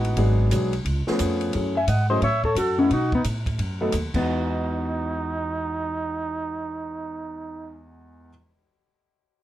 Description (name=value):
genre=jazz, small-group swing and bop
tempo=176 BPM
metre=4/4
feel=swing 64% on 8ths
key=E major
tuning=A4 = 444 Hz
part: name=warm grand piano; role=accompaniment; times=0.0-8.3 s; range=E2 to A4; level=-28 LUFS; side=equal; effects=none
part: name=upright bass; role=bass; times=0.0-8.2 s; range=G#1 to B2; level=-25 LUFS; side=equal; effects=none
part: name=compact cocktail drum kit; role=drums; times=0.0-4.2 s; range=crash cymbal, hi-hat, kick drum, ride cymbal, snare drum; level=-33 LUFS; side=right 1 dB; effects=none
part: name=hollow-body jazz guitar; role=melody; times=1.8-8.2 s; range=B3 to E5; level=-24 LUFS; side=left 3 dB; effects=none
part: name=breathy trumpet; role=second line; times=1.8-7.8 s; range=D#4 to G#5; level=-28 LUFS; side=right 4 dB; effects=none
room=moderate studio ambience, RT60 0.5 s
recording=dark, warm production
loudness=-22 LUFS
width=side -13 dB against mid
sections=0.0-1.5 A section; 1.5-4.3 B section; 4.3-7.0 C section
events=none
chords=0.2 G#m7b5; 0.9 C#7b13; 1.5 F#m9; 2.9 B7; 4.1 Emaj9